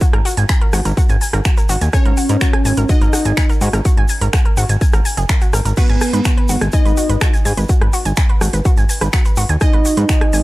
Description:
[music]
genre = melodic techno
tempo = 125 BPM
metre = 4/4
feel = straight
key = unclear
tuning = A4 = 436 Hz
[part]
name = analog pluck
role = arpeggios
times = 0.0-10.4 s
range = F#4 to G#5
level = -24 LUFS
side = equal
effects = chorus, sidechain pumping, analog delay
[part]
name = electronic kick drum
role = drums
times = 0.0-10.2 s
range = none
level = -14 LUFS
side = equal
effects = none
[part]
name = techno drum kit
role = drums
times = 0.0-10.4 s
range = crash cymbal, finger snaps, hi-hat, rim click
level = -22 LUFS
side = equal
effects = none
[part]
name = tube shaker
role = percussion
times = 0.0-10.4 s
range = none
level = -29 LUFS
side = right 2 dB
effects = none
[part]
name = fat analog bass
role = bass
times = 0.1-10.4 s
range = F#1 to G#2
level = -17 LUFS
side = equal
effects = sidechain pumping
[part]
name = expressive synth lead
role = melody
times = 1.9-10.4 s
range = B3 to D#4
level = -21 LUFS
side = equal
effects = lush chorus, sidechain pumping, analog delay
[part]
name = glassy wavetable pluck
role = second line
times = 1.9-10.4 s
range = B4 to D#5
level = -31 LUFS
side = right 2 dB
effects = chorus, sidechain pumping, analog delay
[sound]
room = little or no reverb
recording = dry, gritty hardware recording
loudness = -12 LUFS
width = side -18 dB against mid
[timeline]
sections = 0.0-10.4 A section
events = none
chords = 0.0 F#add9/G#; 5.8 G#m7

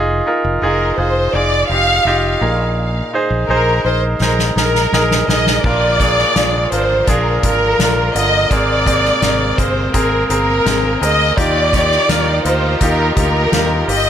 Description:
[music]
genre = piano-driven pop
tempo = 84 BPM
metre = 4/4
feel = straight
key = unclear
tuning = A4 = 440 Hz
[part]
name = clear concert grand piano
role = accompaniment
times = 0.0-14.1 s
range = Ab2 to C5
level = -18 LUFS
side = right 1 dB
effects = none
[part]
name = mellow fretless electric bass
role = bass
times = 0.0-14.1 s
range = F1 to Eb2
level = -20 LUFS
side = equal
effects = none
[part]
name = warm symphonic violin section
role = melody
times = 0.6-14.1 s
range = Bb4 to F5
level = -16 LUFS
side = equal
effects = digital delay
[part]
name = soft-mallet drum kit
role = drums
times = 4.2-14.1 s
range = crash cymbal, hi-hat, kick drum, snare drum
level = -19 LUFS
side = left 1 dB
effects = none
[part]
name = warm studio string section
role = sustained chords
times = 5.6-14.1 s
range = C3 to G4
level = -26 LUFS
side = left 1 dB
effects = none
[sound]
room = light reverb, small room ambience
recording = none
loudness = -12 LUFS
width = side -9 dB against mid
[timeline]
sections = 0.0-5.6 A section; 5.6-14.1 B section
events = drum fill 4.2-5.6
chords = 0.0 Fm7; 2.4 Bb7sus4; 5.6 Bb; 8.5 Abadd9; 11.4 Ebadd9

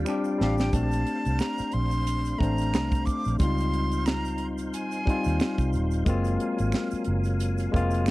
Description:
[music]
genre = R&B, neo-soul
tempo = 90 BPM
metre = 4/4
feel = swing 56% on 16ths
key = Bb major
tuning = A4 = 442 Hz
[part]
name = electric guitar through a small old amp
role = second line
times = 0.0-0.6 s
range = G4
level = -42 LUFS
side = right 11 dB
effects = none
[part]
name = barky tine electric piano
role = accompaniment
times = 0.0-8.1 s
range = G3 to C5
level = -28 LUFS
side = left 3 dB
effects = overdrive
[part]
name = percussive tonewheel organ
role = sustained chords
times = 0.0-8.1 s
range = Gb3 to C6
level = -38 LUFS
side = right 2 dB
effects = overdrive, chorus vibrato, slow rotary speaker
[part]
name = vintage muted fingered electric bass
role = bass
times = 0.0-8.1 s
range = Eb1 to Eb2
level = -27 LUFS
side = right 1 dB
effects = none
[part]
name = finger snaps and tube shaker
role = percussion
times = 0.1-8.1 s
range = none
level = -45 LUFS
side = right 8 dB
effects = none
[part]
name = breathy bright jazz flute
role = melody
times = 0.4-5.7 s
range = F5 to D6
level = -33 LUFS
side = right 1 dB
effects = none
[part]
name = tight funk drum kit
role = drums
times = 0.4-8.1 s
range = hi-hat, kick drum, snare drum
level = -27 LUFS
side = right 1 dB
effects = none
[sound]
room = little or no reverb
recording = dry, close 1970s-style studio recording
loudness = -24 LUFS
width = side -18 dB against mid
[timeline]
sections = 0.7-8.1 A section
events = drum fill 0.1-0.7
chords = 0.0 Ebmaj9 (rootless); 0.7 Bbmaj9; 3.4 Dbmaj9; 6.1 Gbmaj9

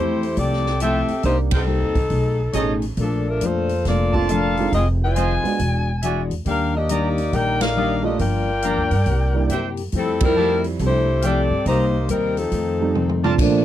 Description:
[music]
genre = jazz, big band swing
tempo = 138 BPM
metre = 4/4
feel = swing 65% on 8ths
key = F major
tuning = A4 = 437 Hz
[part]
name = warm saxophone section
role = melody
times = 0.0-13.2 s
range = F3 to Ab5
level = -22 LUFS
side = left 2 dB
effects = none
[part]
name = fingerpicked steel-string acoustic guitar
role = accompaniment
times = 0.0-13.6 s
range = F2 to G#4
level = -26 LUFS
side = left 6 dB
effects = none
[part]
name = warm baby grand piano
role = accompaniment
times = 0.0-13.4 s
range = Bb2 to G#4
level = -25 LUFS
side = right 7 dB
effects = none
[part]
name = upright bass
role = bass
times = 0.0-13.6 s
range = E1 to Bb2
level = -23 LUFS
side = right 1 dB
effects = none
[part]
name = swinging big-band drum kit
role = drums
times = 0.2-13.5 s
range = crash cymbal, hi-hat, kick drum, ride cymbal, snare drum, toms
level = -26 LUFS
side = right 1 dB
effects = none
[part]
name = bright trumpet section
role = stabs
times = 0.8-13.3 s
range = D#4 to Bb5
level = -26 LUFS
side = right 4 dB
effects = none
[part]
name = clear trombone section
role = second line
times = 13.4-13.6 s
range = F3 to D4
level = -16 LUFS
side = right 5 dB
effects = none
[sound]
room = little or no reverb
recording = dry, close 1970s-style studio recording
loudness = -18 LUFS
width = side -12 dB against mid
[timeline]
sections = 0.0-13.4 A section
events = band accent 1.5, 7.5, 10.1; drum fill 12.9-13.4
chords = 0.0 Fmaj9; 1.2 Cm7; 2.1 B13; 3.0 Bbmaj7; 4.7 Fm7; 5.6 E9; 6.5 Ebmaj7; 8.2 Gm7; 9.1 C7; 9.9 Fmaj9; 11.7 Cm7; 12.5 F7

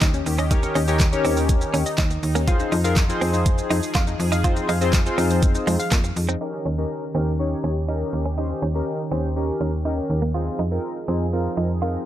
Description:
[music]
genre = dance-pop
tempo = 122 BPM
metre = 4/4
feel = straight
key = unclear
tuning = A4 = 440 Hz
[part]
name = sweeping resonant pad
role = sustained chords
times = 0.0-12.1 s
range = Eb3 to Ab4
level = -31 LUFS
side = right 1 dB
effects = chorus, sidechain pumping
[part]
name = hollow square pluck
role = arpeggios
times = 0.0-6.4 s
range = Eb3 to F5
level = -30 LUFS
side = left 7 dB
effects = chorus, sidechain pumping, digital delay
[part]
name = direct-recorded clean electric guitar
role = riff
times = 0.0-11.9 s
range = Ab3 to F4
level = -29 LUFS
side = right 4 dB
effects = analog chorus
[part]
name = slap-like FM bass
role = bass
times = 0.0-12.0 s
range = Eb2 to F2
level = -24 LUFS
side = equal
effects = sidechain pumping
[part]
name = pop drum kit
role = drums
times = 0.0-6.4 s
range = handclaps, hi-hat, kick drum, shaker, snare drum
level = -22 LUFS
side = equal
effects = none
[part]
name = chorused polysynth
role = accompaniment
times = 0.5-12.1 s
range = C4 to Db5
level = -26 LUFS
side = left 1 dB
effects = sidechain pumping
[sound]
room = light reverb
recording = low-pass filter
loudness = -19 LUFS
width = side -12 dB against mid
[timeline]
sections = 0.0-6.4 A section; 6.4-12.1 B section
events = none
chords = 0.0 Eb7; 2.5 Fm7; 6.4 Eb7; 10.3 Fm7

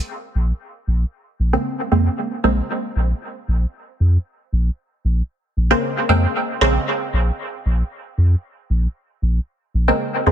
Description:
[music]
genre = dub techno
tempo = 115 BPM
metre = 4/4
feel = straight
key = Bb minor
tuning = A4 = 440 Hz
[part]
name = warm sub bass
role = bass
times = 0.4-10.3 s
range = Bb1 to F2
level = -16 LUFS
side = equal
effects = tube saturation
[part]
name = filtered dub chord stab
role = stabs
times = 1.5-10.3 s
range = Db3 to C4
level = -19 LUFS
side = right 1 dB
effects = chorus, phaser, dub echo
[sound]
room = light reverb, small room ambience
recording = dense, heavily limited modern master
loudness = -18 LUFS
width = side -9 dB against mid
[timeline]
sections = 0.1-10.3 A section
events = none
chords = 0.1 Bbm9

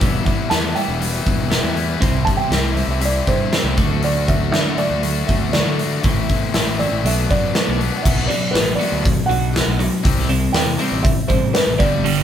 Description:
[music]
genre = quiet-loud alternative rock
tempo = 120 BPM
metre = 4/4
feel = straight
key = unclear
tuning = A4 = 439 Hz
[part]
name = twelve-string electric guitar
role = arpeggios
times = 0.0-12.1 s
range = A2 to F#4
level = -26 LUFS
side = right 2 dB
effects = none
[part]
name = distorted electric guitar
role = riff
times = 0.0-12.2 s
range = G2 to F#4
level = -24 LUFS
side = left 7 dB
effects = overdrive
[part]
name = fuzz fingered electric bass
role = bass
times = 0.0-12.2 s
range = E1 to D3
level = -22 LUFS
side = equal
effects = overdrive
[part]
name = big rock drum kit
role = drums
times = 0.0-12.2 s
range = crash cymbal, hi-hat, kick drum, snare drum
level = -19 LUFS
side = equal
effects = none
[part]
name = felt-muted upright piano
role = melody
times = 0.3-12.2 s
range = B4 to A5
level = -23 LUFS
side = right 2 dB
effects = none
[part]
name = thick fuzz guitar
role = riff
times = 12.0-12.2 s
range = G2 to G3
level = -17 LUFS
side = right 9 dB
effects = distortion
[sound]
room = light reverb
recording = band playing live in one room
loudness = -16 LUFS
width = side -9 dB against mid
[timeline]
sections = 0.0-8.0 A section; 8.0-12.2 B section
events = none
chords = 0.0 Em; 2.0 C; 3.8 D; 6.0 Am; 7.0 Bm7; 8.0 Bm; 10.1 C

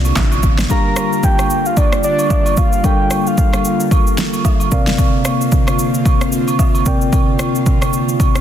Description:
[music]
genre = amapiano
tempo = 112 BPM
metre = 4/4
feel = swing 58% on 16ths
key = G minor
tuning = A4 = 440 Hz
[part]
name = mellow tine electric piano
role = accompaniment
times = 0.0-8.4 s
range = C3 to G5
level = -20 LUFS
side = left 2 dB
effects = slow stereo tremolo
[part]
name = airy breathy pad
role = sustained chords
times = 0.0-8.4 s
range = D3 to F4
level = -21 LUFS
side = equal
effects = chorus, sidechain pumping
[part]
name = round analog bass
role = bass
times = 0.0-0.7 s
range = A1 to C2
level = -16 LUFS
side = equal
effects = none
[part]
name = deep house drum kit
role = drums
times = 0.0-8.4 s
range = handclaps, kick drum, rim click, shaker, snare drum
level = -15 LUFS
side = equal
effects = overdrive, soft clipping on snare
[part]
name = agogo bells and woodblock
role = percussion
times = 0.1-8.3 s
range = none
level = -24 LUFS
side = right 9 dB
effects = none
[part]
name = soft octave-layered synth lead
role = melody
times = 0.7-3.8 s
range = D5 to Bb5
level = -19 LUFS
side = equal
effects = chorus, ping-pong delay
[sound]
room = little or no reverb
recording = dense, heavily limited modern master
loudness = -12 LUFS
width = side -10 dB against mid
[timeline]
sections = 0.0-8.4 A section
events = none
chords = 0.0 C9sus4; 0.7 Gm7; 4.7 C9sus4

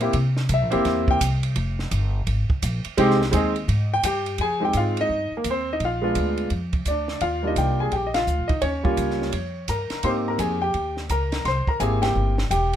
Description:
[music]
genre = jazz piano trio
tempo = 170 BPM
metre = 4/4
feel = swing 64% on 8ths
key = F minor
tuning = A4 = 440 Hz
[part]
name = warm concert grand piano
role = melody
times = 0.0-12.8 s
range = G3 to C6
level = -22 LUFS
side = equal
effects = none
[part]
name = upright bass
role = bass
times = 0.0-12.8 s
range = E1 to C3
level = -25 LUFS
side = equal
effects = none
[part]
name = compact cocktail drum kit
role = drums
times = 0.0-12.8 s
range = hi-hat, kick drum, ride cymbal, snare drum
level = -29 LUFS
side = right 2 dB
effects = none
[sound]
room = light reverb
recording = minimal, uncompressed stereo recording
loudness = -20 LUFS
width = side -10 dB against mid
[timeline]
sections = 0.0-4.4 A section; 4.4-12.8 B section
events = grand piano solo 0.0-4.4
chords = 0.1 C7; 1.6 Fm9; 5.8 Bb7b9; 7.2 Ebmaj7; 8.6 Eb9; 10.0 Abmaj9; 11.4 C7

